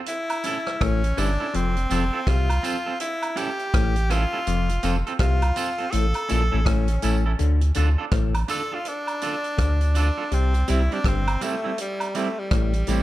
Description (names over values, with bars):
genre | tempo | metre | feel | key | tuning
roots reggae | 82 BPM | 4/4 | swing 62% on 16ths | D minor | A4 = 440 Hz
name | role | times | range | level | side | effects
edgy tenor saxophone | melody | 0.1-13.0 s | G3 to A4 | -28 LUFS | equal | dub echo, plate reverb
vintage drum kit | drums | 0.1-13.0 s | hi-hat, kick drum, rim click | -27 LUFS | equal | none
woodblock and tambourine | percussion | 0.3-13.0 s | none | -33 LUFS | right 3 dB | none
electric guitar at the edge of break-up | accompaniment | 0.4-13.0 s | G3 to A4 | -30 LUFS | right 5 dB | spring reverb, dub echo, plate reverb
clav | riff | 0.8-13.0 s | F2 to D3 | -28 LUFS | left 7 dB | none
warm sub bass | bass | 0.8-13.0 s | F1 to D2 | -22 LUFS | equal | none
room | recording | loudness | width
light reverb | dark, warm production | -21 LUFS | side -15 dB against mid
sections
0.0-7.4 A section; 7.4-13.0 B section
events
tenor saxophone solo 7.4-13.0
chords
0.1 A; 1.5 F; 3.0 A; 4.5 F; 5.9 A; 7.4 Dm; 10.3 C